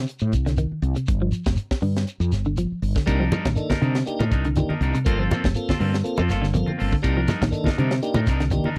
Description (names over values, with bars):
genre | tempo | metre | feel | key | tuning
afrobeat | 121 BPM | 4/4 | swing 53% on 16ths | C dorian | A4 = 441 Hz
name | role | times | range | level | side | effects
clean electric guitar | arpeggios | 0.0-8.7 s | C3 to F3 | -29 LUFS | equal | phaser
woody fretless electric bass | bass | 0.0-8.8 s | F1 to C3 | -26 LUFS | equal | none
tight funk drum kit | drums | 0.1-8.8 s | hi-hat, kick drum, snare drum | -28 LUFS | equal | none
shekere | percussion | 0.1-8.8 s | none | -31 LUFS | equal | none
tonewheel organ | accompaniment | 3.1-8.7 s | Bb3 to A4 | -30 LUFS | equal | slow rotary speaker
electric guitar at the edge of break-up | stabs | 3.1-8.8 s | G3 to Bb4 | -31 LUFS | equal | none
congas | percussion | 3.1-8.8 s | none | -29 LUFS | equal | none
room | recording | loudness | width
little or no reverb | dry, close 1970s-style studio recording | -23 LUFS | mono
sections
0.0-8.8 A section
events
none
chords
0.0 Cm; 1.1 G5; 3.1 Cm9; 5.1 Gm11; 7.0 Cm9